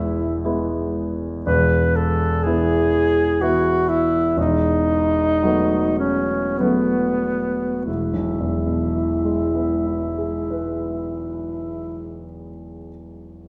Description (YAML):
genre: classical, romantic duo for alto saxophone and grand piano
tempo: 44-63 BPM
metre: 3/4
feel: rubato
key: E major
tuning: A4 = 441 Hz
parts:
  - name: clear alto saxophone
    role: melody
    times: 0.0-12.2 s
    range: B3 to B4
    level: -23 LUFS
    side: equal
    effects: none
  - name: warm grand piano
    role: accompaniment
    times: 0.0-13.5 s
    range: E1 to B4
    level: -24 LUFS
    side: equal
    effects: none
room: wet recital hall reverb, RT60 1.6 s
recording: heard from further back in the room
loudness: -21 LUFS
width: mono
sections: 0.0-1.5 A section; 1.5-7.9 B section; 7.9-11.4 C section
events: slowing down 0.0-7.9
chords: 0.0 E; 4.4 B7/E; 7.9 E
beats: 0.44 | 1.46 2.44 3.40 | 4.37 5.40 6.58 | 7.87 9.05 10.23